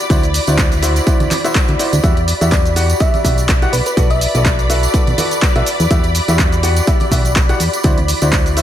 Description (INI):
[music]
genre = piano house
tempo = 124 BPM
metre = 4/4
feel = swing 56% on 16ths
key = E minor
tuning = A4 = 441 Hz
[part]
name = analog string pad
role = sustained chords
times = 0.0-8.6 s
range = D5 to B5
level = -22 LUFS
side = left 1 dB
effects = ensemble chorus, sidechain pumping
[part]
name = punchy analog drum machine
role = drums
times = 0.0-8.6 s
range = handclaps, hi-hat, shaker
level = -21 LUFS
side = right 1 dB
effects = none
[part]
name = clear upright piano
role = riff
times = 0.1-8.6 s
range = E4 to F#5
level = -20 LUFS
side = equal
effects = sidechain pumping, analog delay
[part]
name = solid FM bass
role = bass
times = 0.1-8.6 s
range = B1 to E2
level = -16 LUFS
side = equal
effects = sidechain pumping
[part]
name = electronic kick drum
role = drums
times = 0.1-8.4 s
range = none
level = -15 LUFS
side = equal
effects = overdrive
[part]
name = tambourine and congas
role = percussion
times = 0.1-8.5 s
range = none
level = -27 LUFS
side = right 3 dB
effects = none
[part]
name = thumb-piano-like synth pluck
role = melody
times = 2.5-4.5 s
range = B4 to E5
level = -22 LUFS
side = equal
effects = chorus, analog delay
[sound]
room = light reverb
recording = none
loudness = -12 LUFS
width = side -11 dB against mid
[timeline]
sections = 0.0-8.6 A section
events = none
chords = 0.1 D9; 2.0 Em9; 3.7 Bm7; 5.7 Em9; 7.8 D9